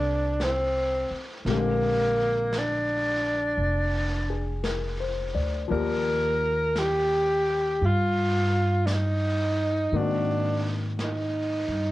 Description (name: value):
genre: jazz ballad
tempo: 57 BPM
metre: 4/4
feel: swing 66% on 8ths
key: unclear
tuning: A4 = 440 Hz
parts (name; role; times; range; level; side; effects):
- warm tenor saxophone; melody; 0.0-11.9 s; Bb3 to Bb4; -25 LUFS; equal; cassette tape, plate reverb
- warm grand piano; accompaniment; 0.0-11.9 s; D3 to D5; -32 LUFS; left 6 dB; cassette tape, plate reverb
- upright bass; bass; 0.0-11.9 s; F1 to Ab2; -28 LUFS; equal; none
- vintage brush drum kit; drums; 0.4-11.9 s; brushed snare drum, hi-hat, snare drum; -37 LUFS; equal; cassette tape
room: moderate studio reverb, RT60 0.5 s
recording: home recording on cassette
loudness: -23 LUFS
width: side -16 dB against mid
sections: 0.0-11.9 A section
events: none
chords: 0.0 Fadd9(#11); 1.5 Bb13; 5.7 Ebmaj9; 9.9 Ab9